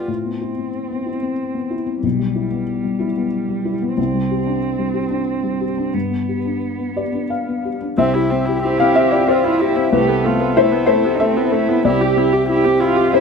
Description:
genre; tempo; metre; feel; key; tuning
neoclassical piano and strings; 93 BPM; 3/4; rubato; A minor; A4 = 440 Hz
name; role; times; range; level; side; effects
felt-muted upright piano; accompaniment; 0.0-13.2 s; B1 to F5; -18 LUFS; left 4 dB; none
muted viola; accompaniment; 0.0-0.1, 8.0-13.2 s; A3 to G4; -21 LUFS; right 1 dB; none
pedal harmonium; sustained chords; 0.0-0.1, 8.0-13.2 s; C4 to E5; -24 LUFS; equal; none
muted cello; second line; 0.1-13.2 s; G3 to G4; -22 LUFS; right 7 dB; none
room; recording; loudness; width
light reverb; none; -16 LUFS; side -5 dB against mid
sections
0.1-8.0 A section; 8.0-13.2 B section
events
none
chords
0.1 Amadd9; 2.0 Em/B; 4.0 Csus2; 5.9 G; 8.0 C; 9.9 Amadd9/C; 11.8 C

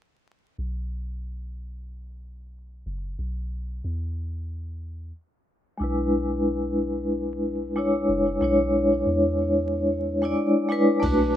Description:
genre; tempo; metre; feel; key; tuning
trip hop; 92 BPM; 4/4; swing 57% on 16ths; B dorian; A4 = 439 Hz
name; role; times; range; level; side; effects
soft 808-style bass; bass; 0.6-11.4 s; F#1 to E2; -32 LUFS; equal; none
vibraphone with medium hard mallets; accompaniment; 5.8-11.4 s; G#3 to D5; -21 LUFS; left 1 dB; tremolo, tape echo
trip hop sampler-style drum kit; drums; 11.0-11.2 s; kick drum, ride cymbal; -31 LUFS; equal; none
room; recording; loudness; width
moderate studio reverb, RT60 0.7 s; rough home demo mix, vinyl crackle, low-pass filter; -22 LUFS; side -11 dB against mid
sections
0.6-11.0 A section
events
filter sweep 0.6-11.0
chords
0.6 B5; 5.8 E7

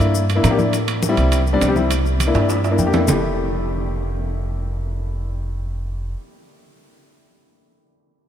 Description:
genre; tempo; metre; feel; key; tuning
Afro-Cuban jazz; 204 BPM; 4/4; straight; F major; A4 = 437 Hz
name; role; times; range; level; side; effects
warm grand piano; accompaniment; 0.0-6.2 s; G3 to Bb5; -20 LUFS; left 2 dB; none
upright bass; bass; 0.0-6.1 s; F1 to A2; -21 LUFS; equal; none
congas; percussion; 0.0-3.1 s; none; -27 LUFS; left 2 dB; none
maracas; percussion; 0.0-3.1 s; none; -33 LUFS; left 10 dB; none
timbales; percussion; 0.0-3.1 s; none; -26 LUFS; right 6 dB; none
room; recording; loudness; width
moderate cathedral reverb, RT60 6.2 s; in a vast, echoing space; -17 LUFS; side -10 dB against mid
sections
0.0-3.1 A section; 3.1-5.4 B section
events
grand piano fill 0.3-0.7, 2.2-3.1; drum fill 2.3-3.1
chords
0.0 C9 (rootless); 0.7 Am7; 1.9 C9; 3.1 Fmaj7

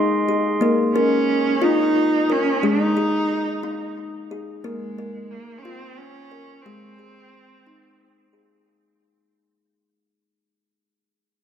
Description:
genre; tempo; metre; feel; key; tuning
world meditative, meditative tuned percussion; 60 BPM (dotted quarters); 6/8; straight; unclear; A4 = 440 Hz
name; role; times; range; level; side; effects
glass harmonica; sustained chords; 0.0-0.6 s; Ab4 to C6; -25 LUFS; right 3 dB; none
kalimba; arpeggios; 0.0-9.0 s; Ab3 to Bb4; -22 LUFS; left 2 dB; dub echo
rich cello; melody; 0.9-8.3 s; Ab3 to Eb4; -23 LUFS; right 2 dB; dub echo
room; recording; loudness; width
wet spring reverb, RT60 2.3 s; echo-heavy mix; -17 LUFS; side -8 dB against mid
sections
0.0-8.7 A section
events
fade-out 0.0-8.7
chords
0.0 Ab; 0.6 Bbm; 2.6 Ab5; 4.6 Bbm; 6.7 Ab

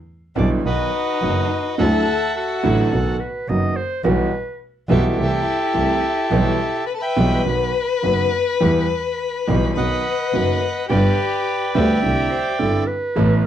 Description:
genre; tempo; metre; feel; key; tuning
tango; 106 BPM; 4/4; rubato; E minor; A4 = 440 Hz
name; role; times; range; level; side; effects
bandoneon; melody; 0.4-12.8 s; F#4 to B5; -22 LUFS; right 1 dB; none
warm violin; second line; 0.4-12.8 s; D4 to B4; -24 LUFS; left 7 dB; none
clear concert grand piano; accompaniment; 0.4-13.4 s; F#1 to A4; -21 LUFS; right 2 dB; none
clear double bass; bass; 0.4-13.4 s; F#1 to E2; -21 LUFS; right 1 dB; none
breathy clarinet; second line; 2.9-4.7, 12.3-13.5 s; A4 to D#5; -25 LUFS; right 2 dB; none
room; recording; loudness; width
moderate studio reverb, RT60 0.6 s; worn, warbling old tape, cassette tape, warbly pitch drift; -17 LUFS; side -10 dB against mid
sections
0.0-13.5 A section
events
none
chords
0.0 Em7; 0.6 B; 1.8 Dadd9; 2.9 B; 4.0 Emadd9/B; 5.2 Am7/C; 6.3 Em/B; 7.5 B; 8.6 Em; 9.8 B; 10.9 G; 12.0 Cadd9

